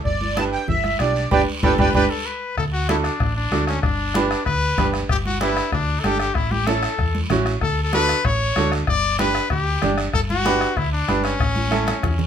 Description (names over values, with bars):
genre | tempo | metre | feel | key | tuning
latin, cumbia | 190 BPM | 4/4 | straight | unclear | A4 = 442 Hz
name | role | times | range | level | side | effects
accordion | melody | 0.0-2.0 s | B4 to A5 | -22 LUFS | right 4 dB | light tremolo tuning
hollow-body short-scale fingered electric bass | bass | 0.0-12.3 s | G1 to E2 | -24 LUFS | equal | none
bombo | percussion | 0.1-12.2 s | none | -26 LUFS | left 3 dB | none
congas | percussion | 0.1-12.3 s | none | -27 LUFS | right 1 dB | none
guiro | percussion | 0.1-12.3 s | none | -33 LUFS | right 3 dB | none
bright upright piano | accompaniment | 0.4-11.9 s | C#4 to D5 | -23 LUFS | right 5 dB | none
bright trumpet | second line | 1.6-12.3 s | C#4 to D5 | -23 LUFS | left 4 dB | none
room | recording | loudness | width
moderate studio ambience, RT60 0.5 s | minimal, uncompressed stereo recording | -18 LUFS | side -8 dB against mid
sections
0.0-2.6 A section; 2.6-12.3 B section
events
band accent 1.3-2.6; drum fill 1.9-2.6, 11.7-12.3; trumpet solo 2.6-12.3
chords
0.1 G; 2.6 D; 3.8 G; 6.4 A; 7.6 D; 8.9 G; 11.4 A